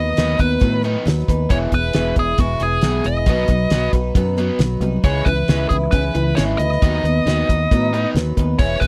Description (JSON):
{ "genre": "folk rock and heartland rock", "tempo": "136 BPM", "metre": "4/4", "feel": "straight", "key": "unclear", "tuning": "A4 = 440 Hz", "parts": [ { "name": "nasal lead guitar with a parked wah", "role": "melody", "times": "0.0-8.9 s", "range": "F#4 to D#5", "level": "-24 LUFS", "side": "equal", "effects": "overdrive" }, { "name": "picked twelve-string acoustic guitar", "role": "accompaniment", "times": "0.0-8.9 s", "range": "B2 to B4", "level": "-28 LUFS", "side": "equal", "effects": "none" }, { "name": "overdriven electric guitar", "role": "riff", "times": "0.0-8.6 s", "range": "E2 to D#4", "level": "-26 LUFS", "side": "equal", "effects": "none" }, { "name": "fingered electric bass", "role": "bass", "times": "0.0-8.9 s", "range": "E1 to A2", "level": "-23 LUFS", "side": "equal", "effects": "none" }, { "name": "damped 70s drum kit", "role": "drums", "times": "0.2-8.9 s", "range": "crash cymbal, hi-hat, kick drum, snare drum", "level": "-20 LUFS", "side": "equal", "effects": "none" } ], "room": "little or no reverb", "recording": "dry, close 1970s-style studio recording", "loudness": "-18 LUFS", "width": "mono", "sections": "0.0-8.6 A section", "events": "none", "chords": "0.0 B/D#; 1.5 E; 3.3 B; 5.0 C#m7; 6.8 B/D#" }